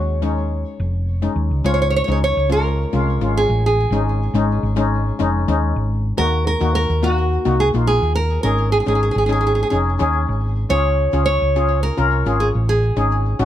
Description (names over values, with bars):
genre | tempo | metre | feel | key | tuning
calypso | 106 BPM | 4/4 | straight | Db major | A4 = 440 Hz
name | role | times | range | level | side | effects
nylon-string guitar | melody | 0.0-13.4 s | Gb4 to Db5 | -21 LUFS | right 2 dB | ping-pong delay
steel pan | accompaniment | 0.0-13.4 s | Ab3 to Bb4 | -22 LUFS | left 4 dB | none
hollow-body short-scale fingered electric bass | bass | 0.0-13.4 s | F1 to Eb2 | -19 LUFS | equal | none
room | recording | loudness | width
light reverb | none | -16 LUFS | side -11 dB against mid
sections
0.0-1.6 A section; 1.6-13.4 B section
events
none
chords
0.0 Absus4; 1.6 Db; 3.9 Absus4; 6.2 Ebm; 8.4 Absus4; 10.7 Db